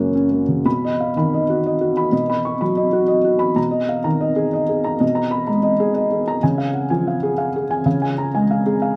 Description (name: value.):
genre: neoclassical minimalist piano.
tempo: 125 BPM.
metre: 3/4.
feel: rubato.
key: unclear.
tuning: A4 = 440 Hz.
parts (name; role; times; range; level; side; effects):
felt-muted upright piano; solo; 0.0-9.0 s; F#2 to C#6; -19 LUFS; equal; none.
room: moderate recital hall reverb, RT60 1.5 s.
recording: none.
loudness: -19 LUFS.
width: mono.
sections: 0.6-9.0 A section.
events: none.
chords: 0.0 F#; 0.6 B; 3.6 G#madd9/B; 6.4 C#.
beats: 0.14 | 0.65 1.14 1.64 | 2.12 2.60 3.08 | 3.57 4.06 4.54 | 5.02 5.48 5.95 | 6.42 6.90 7.37 | 7.85 8.33 8.81.